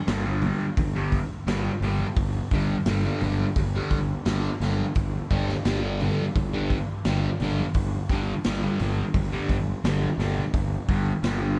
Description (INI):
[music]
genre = psychedelic rock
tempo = 86 BPM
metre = 4/4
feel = straight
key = unclear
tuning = A4 = 440 Hz
[part]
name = swarming drone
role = drone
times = 0.0-11.6 s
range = G2 to D3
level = -37 LUFS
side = equal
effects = none
[part]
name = fuzz guitar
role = riff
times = 0.1-11.6 s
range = G2 to G3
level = -30 LUFS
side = equal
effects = distortion, phaser
[part]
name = fuzz fingered electric bass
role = bass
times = 0.1-11.6 s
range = G1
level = -30 LUFS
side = equal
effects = overdrive
[part]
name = raw garage drum kit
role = drums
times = 0.1-11.4 s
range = hi-hat, kick drum, snare drum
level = -31 LUFS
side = equal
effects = vintage 12-bit sampler grit, analog delay
[part]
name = congas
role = percussion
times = 0.4-10.5 s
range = none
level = -40 LUFS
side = equal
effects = none
[sound]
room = studio reverb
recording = echo-heavy mix, cassette tape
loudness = -26 LUFS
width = mono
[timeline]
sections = 0.0-11.6 A section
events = drum fill 9.7-10.5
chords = 0.0 G5